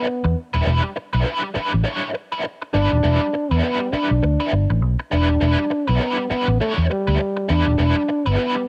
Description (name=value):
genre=funk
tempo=101 BPM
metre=4/4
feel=swing 60% on 16ths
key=E dorian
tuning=A4 = 440 Hz
part: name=breathy trombone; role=melody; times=0.0-8.7 s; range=G3 to D4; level=-24 LUFS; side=equal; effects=cassette tape
part: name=crunchy overdriven guitar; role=accompaniment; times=0.0-8.6 s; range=G3 to C#5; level=-26 LUFS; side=equal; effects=wah, tremolo, cassette tape
part: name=vintage muted fingered electric bass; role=bass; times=0.2-8.4 s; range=D#1 to E2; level=-21 LUFS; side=equal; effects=none
room=small room ambience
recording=home recording on cassette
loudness=-20 LUFS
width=mono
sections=0.0-8.7 A section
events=none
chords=0.0 Em7